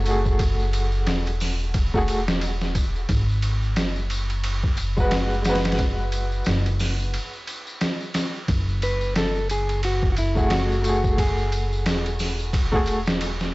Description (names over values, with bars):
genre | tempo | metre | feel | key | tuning
trip hop | 89 BPM | 4/4 | swing 58% on 16ths | F# minor | A4 = 440 Hz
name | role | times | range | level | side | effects
clear upright piano | accompaniment | 0.0-13.0 s | G#3 to B4 | -27 LUFS | equal | tremolo, tape echo
upright bass | bass | 0.0-13.5 s | E1 to G#1 | -24 LUFS | equal | none
trip hop sampler-style drum kit | drums | 0.1-13.5 s | hi-hat, kick drum, ride cymbal, snare drum | -25 LUFS | equal | overdrive
tambourine | percussion | 0.1-13.5 s | none | -38 LUFS | left 2 dB | none
mellow electric guitar | melody | 8.8-12.5 s | E4 to B4 | -28 LUFS | equal | dub echo
room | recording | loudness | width
studio reverb | dry, gritty hardware recording, vinyl crackle, nothing above 7.8 kHz | -21 LUFS | side -21 dB against mid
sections
0.0-13.5 A section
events
break 7.1-8.5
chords
0.0 F#madd9; 3.1 G#m7; 8.5 F#madd9